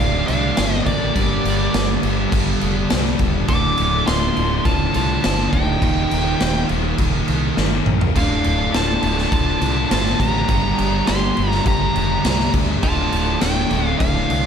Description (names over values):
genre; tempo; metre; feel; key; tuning
hard rock; 103 BPM; 4/4; straight; D phrygian; A4 = 438 Hz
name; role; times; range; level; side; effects
nasal lead guitar with a parked wah; melody; 0.0-14.5 s; D5 to D6; -23 LUFS; equal; overdrive, slapback echo
lightly driven lead guitar; second line; 0.0-14.5 s; Bb3 to A4; -29 LUFS; right 2 dB; slapback echo
overdriven tonewheel organ; sustained chords; 0.0-14.5 s; G3 to F5; -33 LUFS; left 1 dB; slow rotary speaker, chorus vibrato
overdriven electric guitar; riff; 0.0-14.5 s; D2 to G3; -25 LUFS; left 12 dB; none
overdriven semi-hollow guitar; riff; 0.0-14.5 s; D2 to G3; -24 LUFS; right 10 dB; slapback echo
modern bright fingered electric bass; bass; 0.0-14.5 s; D1 to D2; -23 LUFS; equal; none
raw garage drum kit; drums; 0.3-14.4 s; crash cymbal, kick drum, snare drum, toms; -21 LUFS; equal; none
room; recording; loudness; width
moderate recital hall reverb, RT60 1.5 s, studio reverb; big arena sound; -16 LUFS; side -7 dB against mid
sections
0.0-14.5 A section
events
drum fill 7.6-8.2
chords
0.0 Dm; 1.2 Gm; 3.5 Dm; 5.8 Eb; 8.2 Dm; 10.5 Gm; 12.8 Dm